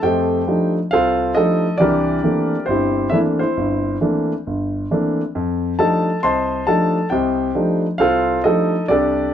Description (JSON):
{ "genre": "solo jazz", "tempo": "136 BPM", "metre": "4/4", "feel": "swing 66% on 8ths", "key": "unclear", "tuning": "A4 = 440 Hz", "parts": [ { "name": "warm concert grand piano", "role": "solo", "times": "0.0-9.3 s", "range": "G1 to C6", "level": "-16 LUFS", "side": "equal", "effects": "none" } ], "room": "moderate studio ambience, RT60 0.5 s", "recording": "none", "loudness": "-16 LUFS", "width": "side -9 dB against mid", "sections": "0.0-9.3 A section", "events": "none", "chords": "0.0 F13; 1.8 C13; 5.3 F13" }